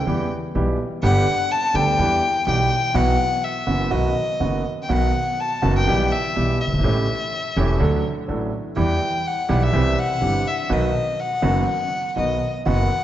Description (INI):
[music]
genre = tango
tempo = 124 BPM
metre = 4/4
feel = rubato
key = E minor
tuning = A4 = 440 Hz
[part]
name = warm violin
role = second line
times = 0.0-13.0 s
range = D#5 to A5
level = -23 LUFS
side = left 3 dB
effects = none
[part]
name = clear concert grand piano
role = accompaniment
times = 0.0-12.9 s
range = E1 to A4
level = -22 LUFS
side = right 2 dB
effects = none
[part]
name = upright bass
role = bass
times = 0.0-12.9 s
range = E1 to E2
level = -24 LUFS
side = equal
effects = none
[sound]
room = wet concert hall reverb, RT60 1.8 s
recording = nothing above 7.8 kHz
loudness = -18 LUFS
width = side -12 dB against mid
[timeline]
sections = 0.0-4.9 A section; 4.9-13.0 A section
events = violin solo 0.0-4.9, 4.9-13.0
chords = 0.1 Em; 1.0 G; 2.0 Em; 2.9 Bsus4; 3.9 B; 5.9 Em/B; 6.8 A7; 7.8 D; 8.8 Em; 9.7 C; 10.7 B